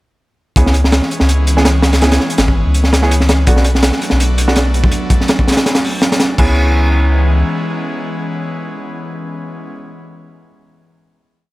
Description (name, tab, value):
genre	drum and bass, jungle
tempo	165 BPM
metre	4/4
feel	straight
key	C# phrygian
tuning	A4 = 440 Hz
part	airy breathy pad	sustained chords	0.8-9.7 s	E3 to D4	-22 LUFS	left 1 dB	chorus, vintage 12-bit sampler grit
part	warm grand piano	stabs	0.6-9.7 s	A3 to G#4	-22 LUFS	right 2 dB	dub echo
part	soft dub sub bass	bass	0.6-7.4 s	G#1 to C#2	-13 LUFS	equal	tube saturation
part	crunchy breakbeat drum kit	drums	0.6-6.5 s	crash cymbal, hi-hat, kick drum, snare drum	-14 LUFS	equal	none
room	small room ambience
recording	none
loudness	-11 LUFS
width	side -19 dB against mid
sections	0.6-6.4 drop; 6.4-9.3 final chord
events	drop 0.6-6.4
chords	0.6 C#m7; 3.5 Bm7; 6.4 C#m7